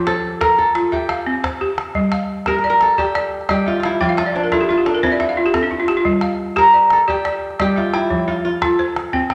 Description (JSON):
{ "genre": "west african traditional, West African string and xylophone music", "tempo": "117 BPM (dotted quarters)", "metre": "12/8", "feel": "straight", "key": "G dorian", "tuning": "A4 = 441 Hz", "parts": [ { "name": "kora", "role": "melody", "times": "0.0-9.3 s", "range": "D4 to Bb4", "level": "-19 LUFS", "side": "equal", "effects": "none" }, { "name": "balafon", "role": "arpeggios", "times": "0.0-9.3 s", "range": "F3 to G5", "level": "-21 LUFS", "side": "equal", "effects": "none" }, { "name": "calabash", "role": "percussion", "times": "0.1-9.3 s", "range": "none", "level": "-29 LUFS", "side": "equal", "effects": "none" } ], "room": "wet large studio reverb, RT60 1.5 s", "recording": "none", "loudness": "-17 LUFS", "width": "mono", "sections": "0.0-1.9 A section; 1.9-9.3 B section", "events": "kora solo 0.0-1.9; balafon fill 4.0-6.1", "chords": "0.0 F; 0.9 C; 1.9 G5; 4.0 Fmaj13; 5.0 N.C.; 6.1 G5; 8.1 F", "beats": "0.41 0.92 1.43 | 1.95 2.46 2.97 3.49 | 4.00 4.51 5.03 5.54 | 6.05 6.57 7.08 7.59 | 8.10 8.62 9.13" }